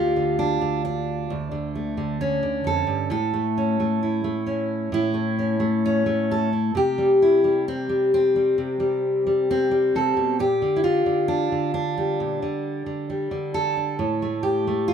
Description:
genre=folk, solo fingerstyle acoustic guitar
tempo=66 BPM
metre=4/4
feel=straight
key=unclear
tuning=A4 = 441 Hz
part: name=fingerpicked steel-string acoustic guitar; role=solo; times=0.0-14.9 s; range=D2 to A4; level=-20 LUFS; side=equal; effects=none
room=light reverb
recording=close, detailed microphones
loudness=-20 LUFS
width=side -8 dB against mid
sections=0.0-14.9 A section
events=none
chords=0.0 Dm; 3.1 A; 6.8 C5; 10.4 Gm/Bb; 14.0 N.C.

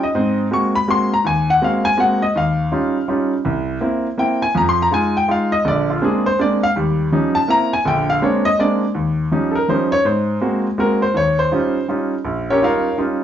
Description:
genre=jazz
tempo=164 BPM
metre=3/4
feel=swing 64% on 8ths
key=Eb mixolydian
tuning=A4 = 440 Hz
part: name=clear baby grand piano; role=solo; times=0.0-13.2 s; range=Bb1 to Db6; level=-15 LUFS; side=equal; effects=none
room=wet studio ambience, RT60 0.5 s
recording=heard from further back in the room, nothing above 7.7 kHz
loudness=-15 LUFS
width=side -10 dB against mid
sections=0.0-8.9 A section; 8.9-13.2 A section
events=grand piano solo 0.0-8.9, 8.9-13.2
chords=0.1 Ab9; 2.3 Eb9; 3.4 C7; 4.5 Fm7; 5.6 Bb9; 6.7 Eb9; 7.5 C7; 7.8 Bb9; 8.9 Eb9; 10.0 Ab9; 11.1 Eb9

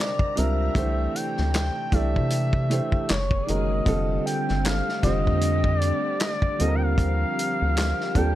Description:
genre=R&B, neo-soul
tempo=77 BPM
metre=4/4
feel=swing 59% on 16ths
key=unclear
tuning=A4 = 440 Hz
part: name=expressive synth lead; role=melody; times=0.0-8.4 s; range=C#5 to G5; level=-28 LUFS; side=left 1 dB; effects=chorus
part: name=warm concert grand piano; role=accompaniment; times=0.0-8.4 s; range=D3 to D5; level=-28 LUFS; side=right 2 dB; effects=none
part: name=soft string machine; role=sustained chords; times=0.0-8.4 s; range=C3 to Bb5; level=-33 LUFS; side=equal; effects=ensemble chorus
part: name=warm soul drum kit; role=drums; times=0.2-8.4 s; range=handclaps, hi-hat, kick drum, snare drum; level=-26 LUFS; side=equal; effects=none
part: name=rubbery square bass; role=bass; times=0.4-8.3 s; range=F1 to C3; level=-24 LUFS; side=equal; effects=none
room=little or no reverb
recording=none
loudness=-21 LUFS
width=side -14 dB against mid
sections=0.0-8.4 A section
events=none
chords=0.0 C7sus2; 0.7 C9; 3.1 F#add9; 3.9 F13; 6.6 Eb69

